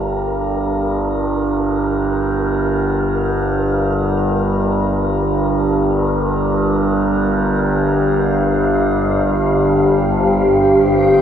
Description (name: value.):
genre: dark ambient drone.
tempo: free time.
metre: none.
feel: none.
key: G minor.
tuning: A4 = 440 Hz.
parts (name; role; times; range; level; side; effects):
overtone-sweeping drone; drone; 0.0-11.2 s; G1 to G2; -15 LUFS; equal; chorus, built-in reverb.
wind-like tuned noise texture; texture; 0.0-11.2 s; Bb4 to F5; -27 LUFS; equal; built-in reverb, shimmer reverb.
granular cloud pad; sustained chords; 9.0-11.2 s; G2 to C5; -16 LUFS; equal; built-in reverb.
room: wet huge ambient reverb, RT60 8.5 s.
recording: none.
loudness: -14 LUFS.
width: side -9 dB against mid.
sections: 0.0-11.2 A section.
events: fade-in on synth texture 0.0-11.2.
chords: 0.0 Gm; 7.9 Fsus2/G.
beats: free time.